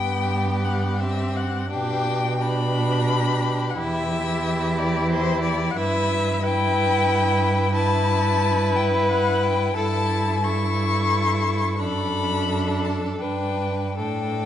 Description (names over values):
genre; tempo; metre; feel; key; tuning
classical, slow romantic movement for string quartet; 71-93 BPM; 3/4; rubato; D major from 7.7 s; A4 = 440 Hz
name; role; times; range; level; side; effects
rich violin; melody; 0.0-14.5 s; C5 to C#6; -26 LUFS; left 6 dB; none
rich violin; second line; 0.0-14.5 s; G4 to B4; -27 LUFS; left 2 dB; none
clear viola; accompaniment; 0.0-14.5 s; B3 to E4; -27 LUFS; right 2 dB; none
rich cello; bass; 0.0-14.5 s; E2 to B2; -24 LUFS; right 2 dB; none
room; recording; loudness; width
moderate concert hall reverb, RT60 2.4 s; vinyl crackle, nothing above 10.9 kHz; -20 LUFS; side -10 dB against mid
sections
0.0-14.5 A section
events
none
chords
0.0 G; 1.7 G/B; 3.8 Em; 5.8 Em/G; 11.8 D/F#; 13.2 G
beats
0.27 1.00 | 1.72 2.41 3.10 | 3.78 4.45 5.11 | 5.77 6.43 7.08 | 7.74 8.42 9.09 | 9.77 10.44 11.11 | 11.79 12.49 13.21 | 13.98